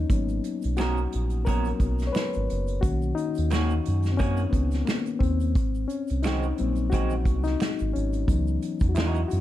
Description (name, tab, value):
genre	R&B, neo-soul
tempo	88 BPM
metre	4/4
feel	swing 55% on 16ths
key	G# minor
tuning	A4 = 442 Hz
part	reed electric piano	accompaniment	0.0-9.4 s	D#3 to C#5	-28 LUFS	left 5 dB	none
part	round analog bass	bass	0.0-9.4 s	F#1 to F#2	-26 LUFS	right 1 dB	none
part	unplugged drum kit	drums	0.1-9.4 s	hi-hat, kick drum, snare drum	-27 LUFS	right 1 dB	none
part	tube shaker and finger snaps	percussion	0.1-9.4 s	none	-45 LUFS	right 9 dB	none
part	electric guitar through a small old amp	second line	0.8-9.2 s	D#3 to A#4	-32 LUFS	right 4 dB	spring reverb
room	little or no reverb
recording	dark, warm production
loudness	-23 LUFS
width	side -13 dB against mid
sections	0.0-9.4 A section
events	reed electric piano solo 0.0-9.4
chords	0.1 G#m11; 2.8 Bmaj9; 5.6 G#7; 8.3 C#m11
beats	| 0.10 0.78 1.46 2.14 | 2.83 3.51 4.19 4.87 | 5.55 6.24 6.92 7.60 | 8.28 8.96